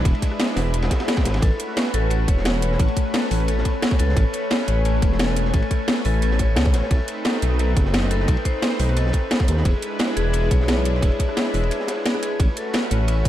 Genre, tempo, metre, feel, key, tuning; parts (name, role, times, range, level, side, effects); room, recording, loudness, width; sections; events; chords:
liquid drum and bass; 175 BPM; 4/4; straight; A major; A4 = 441 Hz
lush unison pad; sustained chords; 0.0-13.3 s; G#3 to G#5; -28 LUFS; right 1 dB; chorus, sidechain pumping
dark detuned saw bass; bass; 0.0-13.3 s; E1 to D#2; -21 LUFS; equal
crunchy breakbeat drum kit; drums; 0.1-13.3 s; ride cymbal, snare drum; -32 LUFS; equal; high-pass filter on cymbals, high-pass filter on snare, high-pass filter on room
drum and bass drum kit; drums; 0.1-13.3 s; hi-hat, rim click, snare drum; -25 LUFS; equal; overdrive
electronic kick drum; drums; 0.1-13.3 s; -20 LUFS; equal; overdrive
swell; sound effects; 0.9-1.4 s; -32 LUFS; left 4 dB
vibraphone with medium hard mallets; arpeggios; 1.4-13.3 s; A3 to C#5; -27 LUFS; left 4 dB; digital delay
light reverb, small room ambience; dark, warm production; -18 LUFS; side -12 dB against mid
0.0-12.4 A section
drop 0.0-12.4; swell 0.9-1.4; break 11.7-12.4
0.0 E7; 1.4 A69; 6.9 B7b9; 9.7 E7; 12.4 A69